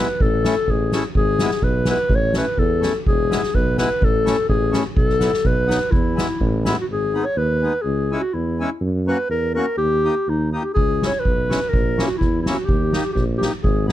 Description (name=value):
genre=alpine folk, alpine dance band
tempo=125 BPM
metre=2/4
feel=straight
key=E major, G# minor from 6.9 s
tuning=A4 = 440 Hz
part: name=mellow clarinet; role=melody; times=0.0-13.9 s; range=D#4 to C#5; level=-21 LUFS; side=left 2 dB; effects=none
part: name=accordion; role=accompaniment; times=0.0-13.9 s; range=F#3 to G4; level=-25 LUFS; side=left 2 dB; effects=none
part: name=mellow tuba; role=bass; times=0.0-13.9 s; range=E1 to F#2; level=-23 LUFS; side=right 1 dB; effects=none
part: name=soft-mallet drum kit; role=drums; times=0.2-6.8, 10.8-13.9 s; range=hi-hat, kick drum, snare drum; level=-21 LUFS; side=equal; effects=none
room=little or no reverb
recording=dark, warm production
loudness=-17 LUFS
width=side -13 dB against mid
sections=0.0-6.9 A section; 6.9-13.9 B section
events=none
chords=0.2 A; 1.2 E/G#; 2.1 A; 3.1 E; 4.0 A; 5.0 B7sus4; 5.4 B; 5.9 E; 6.9 G#m; 7.9 C#m; 8.8 F#; 9.8 D#; 10.8 C#m; 11.7 A#dim; 12.7 D#